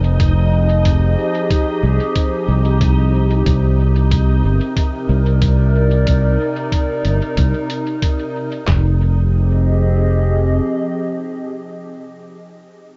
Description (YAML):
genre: ambient dub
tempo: 92 BPM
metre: 4/4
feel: straight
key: F dorian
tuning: A4 = 440 Hz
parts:
  - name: warbly tape-like pad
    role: sustained chords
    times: 0.0-12.0 s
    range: C3 to Eb5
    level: -24 LUFS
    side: equal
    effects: chorus, built-in reverb, phaser
  - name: fingered electric bass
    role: bass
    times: 0.0-10.6 s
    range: F1 to C2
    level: -16 LUFS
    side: equal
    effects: none
  - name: backwards swelling texture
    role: texture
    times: 0.0-8.7 s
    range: Eb4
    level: -32 LUFS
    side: equal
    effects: built-in reverb
  - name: electronic hi-hat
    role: drums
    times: 0.2-8.2 s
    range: none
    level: -33 LUFS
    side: equal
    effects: dub echo
  - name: lo-fi sampler-style drum kit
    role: drums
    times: 0.2-8.8 s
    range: handclaps, kick drum, snare drum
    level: -20 LUFS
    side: equal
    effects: none
room: moderate huge ambient reverb, RT60 7.0 s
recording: dreamy mix soaked in reverb, nothing above 7.8 kHz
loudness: -16 LUFS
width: mono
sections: 0.0-8.7 A section; 8.7-11.3 B section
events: filter sweep on fingered electric bass 0.0-8.7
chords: 0.0 Fm7; 3.5 Cm9; 8.7 Fm7